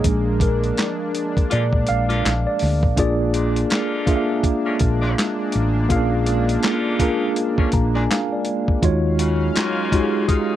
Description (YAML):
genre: R&B, neo-soul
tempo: 82 BPM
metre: 4/4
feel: swing 60% on 16ths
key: unclear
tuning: A4 = 440 Hz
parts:
  - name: mellow tine electric piano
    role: accompaniment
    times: 0.0-10.6 s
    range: F3 to Bb5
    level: -21 LUFS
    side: right 1 dB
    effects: medium stereo tremolo
  - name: chorused pulse-width pad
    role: sustained chords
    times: 0.0-10.6 s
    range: Gb3 to F5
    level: -28 LUFS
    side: equal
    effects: none
  - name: dusty soul sampler-style drum kit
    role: drums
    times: 0.0-10.5 s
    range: handclaps, hi-hat, kick drum, snare drum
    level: -21 LUFS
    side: equal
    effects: overdrive
  - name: hollow-body short-scale fingered electric bass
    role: bass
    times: 0.1-9.5 s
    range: A1 to Bb2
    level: -21 LUFS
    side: equal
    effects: none
  - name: edgy saxophone section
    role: stabs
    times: 1.5-10.6 s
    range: Bb2 to Gb4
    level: -28 LUFS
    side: left 3 dB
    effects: none
room: light reverb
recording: none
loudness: -17 LUFS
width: side -12 dB against mid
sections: 0.0-3.0 A section; 3.0-8.8 B section; 8.8-10.6 C section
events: tine electric piano solo 0.0-3.0; band accent 0.0-3.0; tine electric piano fill 7.4-8.8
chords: 0.0 Bb7; 8.8 Ebm11